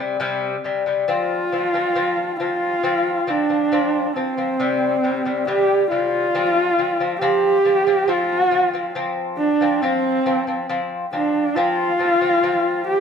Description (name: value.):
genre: mongolian traditional, Mongolian folk.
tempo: 69 BPM.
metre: 4/4.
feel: straight.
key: unclear.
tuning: A4 = 441 Hz.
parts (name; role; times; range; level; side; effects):
dark horsehead fiddle; melody; 0.0-13.0 s; C4 to G4; -19 LUFS; right 1 dB; none.
lute; arpeggios; 0.0-13.0 s; C3 to C4; -22 LUFS; left 3 dB; none.
room: moderate large studio reverb, RT60 1.0 s.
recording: band playing live in one room.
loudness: -17 LUFS.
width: side -6 dB against mid.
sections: 0.0-8.1 A section; 8.1-13.0 B section.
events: none.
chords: 0.0 C5; 1.1 F5; 4.6 C5; 6.3 F5.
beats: 0.21 | 1.09 1.97 2.84 3.72 | 4.59 5.47 6.34 7.21 | 8.08 8.96 9.83 10.70 | 11.57 12.44.